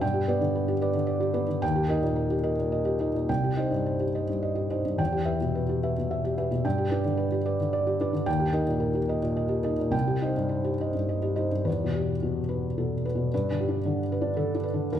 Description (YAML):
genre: neoclassical minimalist piano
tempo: 102-113 BPM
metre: 3/4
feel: rubato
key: unclear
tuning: A4 = 439 Hz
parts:
  - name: felt-muted upright piano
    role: solo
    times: 0.0-15.0 s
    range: C2 to G5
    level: -24 LUFS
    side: equal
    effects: none
room: wet recital hall reverb, RT60 1.6 s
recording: recorded in a church or concert hall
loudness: -24 LUFS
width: side -10 dB against mid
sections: 0.0-11.7 A section; 11.7-15.0 B section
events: none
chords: 0.0 G; 1.6 D#; 3.3 Cm; 5.0 Em; 6.6 G; 8.3 D#; 9.9 Cm; 11.7 Em; 13.3 G